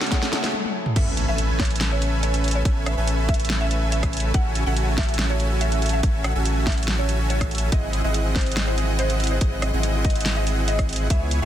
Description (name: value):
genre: future bass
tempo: 142 BPM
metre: 4/4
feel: half-time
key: A major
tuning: A4 = 443 Hz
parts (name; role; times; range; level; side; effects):
- mallet-like synth pluck; melody; 0.0-11.4 s; B#4 to F#5; -31 LUFS; equal; ensemble chorus, sidechain pumping, ping-pong delay
- felt-muted upright piano; accompaniment; 0.0-1.0 s; A3 to G#5; -32 LUFS; left 3 dB; sidechain pumping, ping-pong delay
- rich studio string section; sustained chords; 0.0-11.4 s; B#2 to G#5; -36 LUFS; left 1 dB; none
- dense compressed supersaw; riff; 0.0-11.4 s; B3 to G#5; -27 LUFS; right 1 dB; sidechain pumping
- pop drum kit; drums; 0.0-11.4 s; crash cymbal, hi-hat, rim click, snare drum, toms; -27 LUFS; equal; soft clipping on snare
- riser and impact; sound effects; 0.0-2.7 s; none; -32 LUFS; right 1 dB; none
- electronic kick drum; drums; 0.1-11.2 s; none; -22 LUFS; equal; none
- saturated sub bass; bass; 1.0-11.4 s; G#1 to C#2; -23 LUFS; equal; sidechain pumping
room: digital ambience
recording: dense, heavily limited modern master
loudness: -20 LUFS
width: side -11 dB against mid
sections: 1.0-11.4 A section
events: drum fill 0.0-0.5, 0.5-1.0; riser 0.0-0.5; stop 0.5-1.0; drop 1.0-11.4; impact 1.0-2.7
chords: 0.0 F#m9; 1.0 Amaj9; 4.3 F#m9/A; 7.7 G#7b13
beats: 0.12 0.54 | 0.96 1.38 1.81 2.23 | 2.65 3.08 3.50 3.92 | 4.34 4.76 5.19 5.61 | 6.03 6.46 6.88 7.30 | 7.72 8.14 8.57 8.99 | 9.41 9.84 10.26 10.68 | 11.10